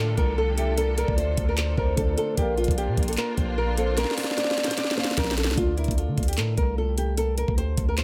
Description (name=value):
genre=hip hop, trap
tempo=150 BPM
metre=4/4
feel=half-time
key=D minor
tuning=A4 = 444 Hz
part: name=nylon-string guitar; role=melody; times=0.0-8.0 s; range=E4 to D5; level=-31 LUFS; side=equal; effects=tape echo
part: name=dark concert grand piano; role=accompaniment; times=0.0-8.0 s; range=D3 to F5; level=-38 LUFS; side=equal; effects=tape echo
part: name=warm symphonic string section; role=sustained chords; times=0.0-5.5 s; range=D3 to A4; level=-37 LUFS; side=equal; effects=none
part: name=long sustained 808-style bass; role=bass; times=0.0-8.0 s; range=Bb1 to D3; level=-28 LUFS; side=equal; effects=none
part: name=trap drum kit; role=drums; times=0.2-8.0 s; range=handclaps, hi-hat, kick drum, snare drum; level=-29 LUFS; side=equal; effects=none
part: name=hollow clarinet-like synth lead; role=second line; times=0.6-5.5 s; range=Bb4 to E5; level=-36 LUFS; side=equal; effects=chorus, tape echo
room=small room ambience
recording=echo-heavy mix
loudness=-25 LUFS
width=mono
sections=0.0-5.6 A section; 5.6-8.0 B section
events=drum fill 4.0-5.6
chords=0.0 Dm; 2.4 Bb; 5.6 Dm